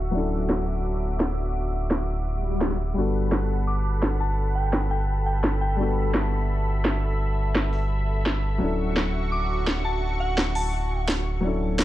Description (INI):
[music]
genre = liquid drum and bass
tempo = 170 BPM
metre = 4/4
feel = straight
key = G lydian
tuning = A4 = 442 Hz
[part]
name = dark grand piano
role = accompaniment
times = 0.0-11.8 s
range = F#3 to A4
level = -31 LUFS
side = left 3 dB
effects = digital delay
[part]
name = lush unison pad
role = sustained chords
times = 0.0-11.8 s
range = F#4 to D6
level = -32 LUFS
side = equal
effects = chorus, vintage 12-bit sampler grit
[part]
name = sub bass with octave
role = bass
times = 0.0-11.8 s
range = D1 to G1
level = -26 LUFS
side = equal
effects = none
[part]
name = drum and bass drum kit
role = drums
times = 0.5-11.8 s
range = hi-hat, snare drum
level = -26 LUFS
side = equal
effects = small room reverb
[part]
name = swell and riser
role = sound effects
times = 2.4-3.0, 11.4-11.8 s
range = none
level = -32 LUFS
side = left 3 dB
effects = none
[part]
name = soft synth bell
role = melody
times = 3.7-6.0, 9.3-11.1 s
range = F#5 to D6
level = -33 LUFS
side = left 1 dB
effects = chorus, ping-pong delay
[sound]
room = digital ambience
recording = low-pass filter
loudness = -22 LUFS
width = side -14 dB against mid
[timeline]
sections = 0.0-11.8 A section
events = filter sweep on drum 0.0-11.8; filter sweep on grand piano 0.0-11.8; filter sweep 0.0-11.8; swell 2.4-3.0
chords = 0.0 Dmaj9; 3.0 Gmaj9; 8.6 Dmaj9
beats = | 0.14 0.49 0.85 1.20 | 1.55 1.91 2.26 2.61 | 2.97 3.32 3.67 4.03 | 4.38 4.73 5.08 5.44 | 5.79 6.14 6.50 6.85 | 7.20 7.55 7.91 8.26 | 8.61 8.97 9.32 9.67 | 10.03 10.38 10.73 11.08 | 11.44 11.79